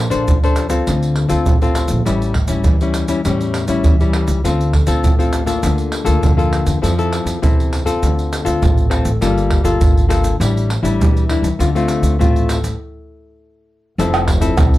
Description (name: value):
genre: samba and choro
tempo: 101 BPM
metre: 4/4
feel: straight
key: D minor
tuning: A4 = 437 Hz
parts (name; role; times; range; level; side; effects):
- nylon-string guitar; accompaniment; 0.0-14.8 s; A2 to C5; -18 LUFS; left 3 dB; none
- upright bass; bass; 0.0-14.8 s; F1 to F2; -19 LUFS; equal; none
- egg shaker, pandeiro, surdo and tamborim; percussion; 0.1-14.8 s; none; -16 LUFS; right 1 dB; none
room: light reverb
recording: dark, warm production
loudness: -13 LUFS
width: side -16 dB against mid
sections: 0.0-14.0 A section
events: stop 12.8-14.0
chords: 0.0 Bbmaj9; 0.9 Dm7; 2.1 A7; 4.5 Dm7; 5.6 Bbmaj7/D; 6.8 Fmaj7; 8.0 Dm7; 9.2 Gm9; 10.4 A7sus4; 11.6 Dm7; 14.0 Fmaj7